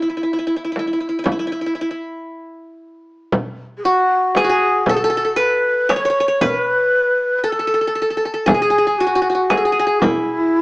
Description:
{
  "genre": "Arabic maqam ensemble",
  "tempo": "117 BPM (eighths)",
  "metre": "10/8",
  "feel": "straight",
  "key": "E maqam ajam",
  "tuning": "A4 = 441 Hz",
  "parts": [
    { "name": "qanun", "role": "melody", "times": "0.0-10.6 s", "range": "E4 to C#5", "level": "-18 LUFS", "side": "equal", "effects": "none" },
    { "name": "frame drum", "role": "percussion", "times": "0.8-10.3 s", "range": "none", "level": "-20 LUFS", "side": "equal", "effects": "none" },
    { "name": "darbuka", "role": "percussion", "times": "3.3-10.2 s", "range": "none", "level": "-25 LUFS", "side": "equal", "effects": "none" },
    { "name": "breathy bright low ney", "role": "second line", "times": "3.8-10.6 s", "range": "E4 to C#5", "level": "-18 LUFS", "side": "left 1 dB", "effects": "none" }
  ],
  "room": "light reverb",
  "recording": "band playing live in one room, small speaker sound",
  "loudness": "-15 LUFS",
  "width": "side -22 dB against mid",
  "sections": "0.0-3.3 A section; 3.3-10.6 B section",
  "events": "none",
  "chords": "none"
}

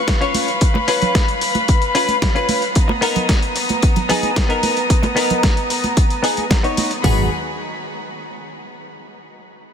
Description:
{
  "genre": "nu-disco, nu disco",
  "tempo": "112 BPM",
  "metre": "4/4",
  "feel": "straight",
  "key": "G# dorian",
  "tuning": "A4 = 440 Hz",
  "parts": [
    { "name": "rich chamber violin section", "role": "sustained chords", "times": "0.0-7.3 s", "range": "B3 to D#6", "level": "-21 LUFS", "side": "left 1 dB", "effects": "sidechain pumping, low-pass filter" },
    { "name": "dusty soul sampler-style drum kit", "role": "drums", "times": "0.1-7.0 s", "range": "hi-hat, snare drum", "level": "-23 LUFS", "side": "left 2 dB", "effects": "overdrive" },
    { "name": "house drum kit", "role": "drums", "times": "0.1-7.2 s", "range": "hi-hat, kick drum, toms", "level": "-16 LUFS", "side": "equal", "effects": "none" },
    { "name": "direct-recorded clean electric guitar", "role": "riff", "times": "0.2-7.3 s", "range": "B3 to C#5", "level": "-22 LUFS", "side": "left 2 dB", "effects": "lush chorus, low-pass filter, ping-pong delay" },
    { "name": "congas", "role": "percussion", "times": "0.3-6.9 s", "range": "none", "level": "-26 LUFS", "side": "right 4 dB", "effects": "none" },
    { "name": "mellow synth brass", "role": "accompaniment", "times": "7.0-7.2 s", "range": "D#3 to F#4", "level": "-32 LUFS", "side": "left 1 dB", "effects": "chorus, ping-pong delay" },
    { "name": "fat analog bass", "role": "bass", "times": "7.0-7.3 s", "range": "G#1", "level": "-22 LUFS", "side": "equal", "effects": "none" }
  ],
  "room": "moderate huge ambient reverb, RT60 7.1 s",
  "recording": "dreamy mix soaked in reverb",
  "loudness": "-14 LUFS",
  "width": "side -8 dB against mid",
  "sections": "0.0-7.0 A section; 7.0-9.2 B section",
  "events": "filter sweep on clean electric guitar 0.0-7.0; filter sweep on violin section 0.0-7.0",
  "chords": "0.0 C#7; 2.8 Bmaj7; 7.0 G#m7"
}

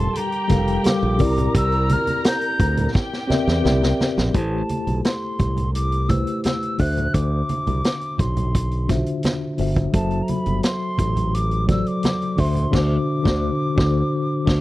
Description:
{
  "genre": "lush 1970s-style soul",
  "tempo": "86 BPM",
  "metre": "4/4",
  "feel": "straight",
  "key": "A dorian from 4.3 s",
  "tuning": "A4 = 440 Hz",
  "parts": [
    { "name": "hollow concert flute", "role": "melody", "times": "0.0-14.6 s", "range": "A5 to G6", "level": "-27 LUFS", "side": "equal", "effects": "none" },
    { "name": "muted studio string section", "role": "second line", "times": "0.0-4.3 s", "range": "G4 to Bb5", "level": "-29 LUFS", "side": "equal", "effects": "none" },
    { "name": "mellow tine electric piano", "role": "accompaniment", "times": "0.0-14.6 s", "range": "D3 to F5", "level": "-24 LUFS", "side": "left 2 dB", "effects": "medium stereo tremolo" },
    { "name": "modern bright fingered electric bass", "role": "bass", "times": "0.0-14.6 s", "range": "F1 to E2", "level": "-22 LUFS", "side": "equal", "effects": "none" },
    { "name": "vintage drum kit", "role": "drums", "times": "0.2-14.6 s", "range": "crash cymbal, hi-hat, kick drum, snare drum", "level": "-21 LUFS", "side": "equal", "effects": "none" },
    { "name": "congas", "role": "percussion", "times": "0.2-12.7 s", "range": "none", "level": "-29 LUFS", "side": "right 3 dB", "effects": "none" }
  ],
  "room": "small room ambience",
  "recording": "dry, close 1970s-style studio recording",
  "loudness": "-18 LUFS",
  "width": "side -17 dB against mid",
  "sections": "0.0-4.3 A section; 4.3-14.6 B section",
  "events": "drum fill 2.9-4.3, 14.1-14.6; band accent 12.7-14.6",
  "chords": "0.0 Gm7; 1.2 C7; 4.3 Am7; 6.8 D7; 9.9 F#m7b5; 12.4 D7"
}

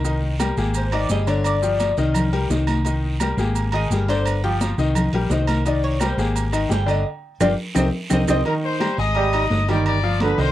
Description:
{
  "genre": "latin, salsa",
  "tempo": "171 BPM",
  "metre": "4/4",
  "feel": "straight",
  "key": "C minor",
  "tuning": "A4 = 440 Hz",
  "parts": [
    { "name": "Cuban tres", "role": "melody", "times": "0.0-8.4 s", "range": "G4 to G5", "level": "-25 LUFS", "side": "left 1 dB", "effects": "none" },
    { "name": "bright upright piano", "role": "accompaniment", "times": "0.0-10.5 s", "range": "D3 to Eb6", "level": "-24 LUFS", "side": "left 4 dB", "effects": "none" },
    { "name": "hollow-body short-scale fingered electric bass", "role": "bass", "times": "0.0-10.5 s", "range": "G1 to C2", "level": "-22 LUFS", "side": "equal", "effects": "none" },
    { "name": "agogo bells and timbales", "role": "percussion", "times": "0.0-10.4 s", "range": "none", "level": "-30 LUFS", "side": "right 6 dB", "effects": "none" },
    { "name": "congas", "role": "percussion", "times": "0.0-10.5 s", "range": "none", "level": "-27 LUFS", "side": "equal", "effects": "none" },
    { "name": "maracas", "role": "percussion", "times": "0.0-8.4 s", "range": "none", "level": "-35 LUFS", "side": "right 12 dB", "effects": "none" },
    { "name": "guiro", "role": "percussion", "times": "0.1-10.5 s", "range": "none", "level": "-37 LUFS", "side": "right 4 dB", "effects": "none" },
    { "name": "claves", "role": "percussion", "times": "0.4-10.0 s", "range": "none", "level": "-33 LUFS", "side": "right 7 dB", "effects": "none" },
    { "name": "bright trumpet section", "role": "melody", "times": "8.5-10.5 s", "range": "Bb4 to Eb6", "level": "-23 LUFS", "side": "left 3 dB", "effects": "none" },
    { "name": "warm trombone section", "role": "second line", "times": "8.5-10.5 s", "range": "D3 to G3", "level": "-23 LUFS", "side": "right 5 dB", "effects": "none" }
  ],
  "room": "light reverb",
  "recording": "dry, close 1970s-style studio recording",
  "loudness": "-18 LUFS",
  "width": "side -13 dB against mid",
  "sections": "0.0-8.5 A section; 8.5-10.5 B section",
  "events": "Cuban tres solo 0.0-8.5; drum fill 7.1-8.5; band accent 7.1-8.5",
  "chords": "0.0 Cm7; 0.8 Ab5; 1.5 G5; 2.2 Cm7; 3.6 Ab5; 4.3 G5; 5.0 Cm7; 6.4 Ab5; 7.1 G5; 7.8 Cm7; 9.2 Ab5; 9.9 G7"
}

